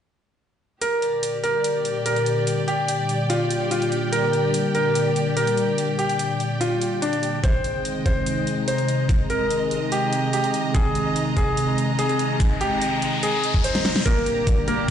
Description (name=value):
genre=heavy wobble dubstep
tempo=145 BPM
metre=4/4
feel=half-time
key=G phrygian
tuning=A4 = 441 Hz
part: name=bright concert grand piano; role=melody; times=0.8-14.9 s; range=Bb3 to C5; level=-23 LUFS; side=left 1 dB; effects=ping-pong delay
part: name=lush unison pad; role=sustained chords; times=1.2-14.9 s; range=Bb2 to Eb4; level=-25 LUFS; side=equal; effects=chorus, phaser, sidechain pumping
part: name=dubstep drum kit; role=drums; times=0.8-14.9 s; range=hi-hat, snare drum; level=-30 LUFS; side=right 1 dB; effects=high-pass filter on hats, studio reverb, high-pass filter on snare
part: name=rich symphonic string section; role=texture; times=0.8-14.9 s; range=Ab3 to Bb5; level=-30 LUFS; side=equal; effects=sidechain pumping
part: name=electronic kick drum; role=drums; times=7.4-14.9 s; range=none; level=-21 LUFS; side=equal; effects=studio reverb
part: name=riser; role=sound effects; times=11.8-14.1 s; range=none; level=-30 LUFS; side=left 5 dB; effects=none
room=moderate digital room reverb, RT60 1.1 s, digital ambience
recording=played on a big sound system in a bare room, large studio reverb, nothing above 10.6 kHz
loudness=-20 LUFS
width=side -9 dB against mid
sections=0.8-14.1 A section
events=filter sweep on analog synth pad 0.8-14.1; riser 11.8-14.1; drum fill 13.7-14.1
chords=0.8 Gm; 7.4 Ab; 14.1 Gm